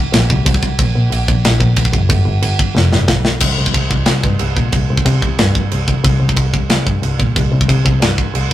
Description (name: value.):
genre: heavy metal.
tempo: 183 BPM.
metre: 4/4.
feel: straight.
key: unclear.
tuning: A4 = 442 Hz.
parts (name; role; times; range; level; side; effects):
clear double bass; bass; 0.0-8.5 s; F1 to C3; -14 LUFS; equal; none.
tight metal drum kit; drums; 0.1-8.5 s; china cymbal, crash cymbal, kick drum, snare drum; -15 LUFS; equal; none.
room: light reverb.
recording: rough rehearsal-room recording, tube saturation.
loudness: -12 LUFS.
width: side -13 dB against mid.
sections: 0.0-3.4 A section; 3.4-8.5 B section.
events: drum fill 2.8-3.4.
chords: none.